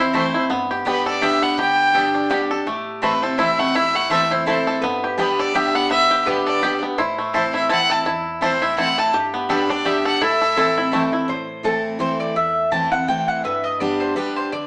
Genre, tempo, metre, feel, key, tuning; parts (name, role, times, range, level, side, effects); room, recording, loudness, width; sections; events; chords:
bluegrass; 167 BPM; 3/4; swing 55% on 8ths; A dorian; A4 = 442 Hz
clear fiddle; melody; 0.0-10.9 s; B4 to A5; -22 LUFS; equal
picked steel-string acoustic guitar; accompaniment; 0.0-14.7 s; E2 to G4; -27 LUFS; equal
bluegrass banjo; arpeggios; 0.0-11.3 s; A3 to A4; -25 LUFS; equal
mandolin; stabs; 0.1-14.7 s; B3 to A5; -26 LUFS; equal
lap resonator guitar; second line; 2.7-14.7 s; E4 to C5; -30 LUFS; equal
wet studio reverb, RT60 0.7 s; -20 LUFS; mono
0.0-11.3 A section; 11.3-14.7 B section
mandolin solo 11.3-14.7
0.0 Am; 0.5 G; 2.7 Am; 4.8 G; 7.0 Am; 9.1 G; 10.2 Am; 13.4 G